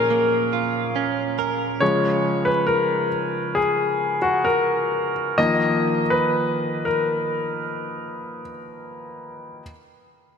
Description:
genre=pop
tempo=50-70 BPM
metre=4/4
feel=straight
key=unclear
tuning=A4 = 439 Hz
part: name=bright grand piano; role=accompaniment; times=0.0-9.6 s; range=Bb2 to Eb5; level=-20 LUFS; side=left 2 dB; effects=none
part: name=direct-recorded clean electric guitar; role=arpeggios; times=0.0-2.4 s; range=Bb2 to Bb4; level=-25 LUFS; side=right 6 dB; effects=lush chorus
room=wet lush hall reverb, RT60 2.9 s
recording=bright 1980s-style digital production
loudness=-19 LUFS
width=side -6 dB against mid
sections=0.0-9.6 A section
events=grand piano solo 0.0-9.6; slowing down 1.8-9.6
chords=0.0 Bbm; 1.8 Db; 5.4 Ebsus2

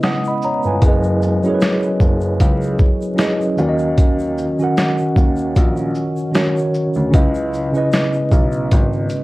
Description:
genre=lo-fi hip hop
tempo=76 BPM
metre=4/4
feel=swing 55% on 16ths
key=unclear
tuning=A4 = 440 Hz
part: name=mellow tine electric piano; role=accompaniment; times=0.0-9.2 s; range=C#3 to D#6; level=-18 LUFS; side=equal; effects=medium stereo tremolo, cassette tape
part: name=deep dark ambient pad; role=sustained chords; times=0.0-9.2 s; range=C#3 to D#5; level=-28 LUFS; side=right 2 dB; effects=none
part: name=boom bap sampler-style drum kit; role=drums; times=0.0-9.2 s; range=hi-hat, kick drum, shaker, snare drum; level=-15 LUFS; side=equal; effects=none
part: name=tube shaker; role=percussion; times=0.0-9.2 s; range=none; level=-48 LUFS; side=left 4 dB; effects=none
part: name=dark grand piano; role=bass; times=0.6-9.1 s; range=F#1 to D#2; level=-21 LUFS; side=equal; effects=tube saturation
room=light reverb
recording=worn, warbling old tape, cassette tape, vinyl crackle, warbly pitch drift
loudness=-14 LUFS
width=side -19 dB against mid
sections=0.0-9.2 A section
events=none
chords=0.0 C#m9; 0.8 F#13sus4; 3.6 D#m7; 7.1 C#m9

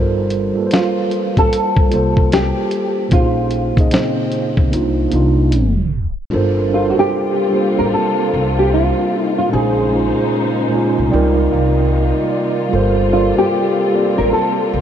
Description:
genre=lo-fi hip hop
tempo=75 BPM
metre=4/4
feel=swing 63% on 16ths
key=G minor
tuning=A4 = 442 Hz
part: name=mellow tine electric piano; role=accompaniment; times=0.0-14.8 s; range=Bb2 to Ab5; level=-17 LUFS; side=right 2 dB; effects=medium stereo tremolo, low-pass filter
part: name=upright bass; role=bass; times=0.0-14.8 s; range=G1 to C2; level=-19 LUFS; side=left 1 dB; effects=none
part: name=dusty soul sampler-style drum kit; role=drums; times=0.3-6.3 s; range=hi-hat, kick drum, snare drum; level=-17 LUFS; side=left 1 dB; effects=none
part: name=nylon-string guitar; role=melody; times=0.7-14.8 s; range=C4 to Bb4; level=-18 LUFS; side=left 1 dB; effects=ensemble chorus, low-pass filter, analog delay
part: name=warm studio string section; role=sustained chords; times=6.3-14.8 s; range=C3 to C5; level=-23 LUFS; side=left 2 dB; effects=low-pass filter
room=moderate huge ambient reverb, RT60 4.8 s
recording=dreamy mix soaked in reverb, cassette tape, tape stop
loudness=-13 LUFS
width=side -9 dB against mid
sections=0.0-6.3 A section; 6.3-14.8 B section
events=drum fill 4.7-6.3; tape stop 5.5-6.3; tine electric piano fill 10.3-12.7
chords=0.0 Gm11; 3.1 Bbm11; 4.7 Cm11; 6.3 Gm11; 9.5 Bbm11; 11.1 Cm11; 12.7 Gm11

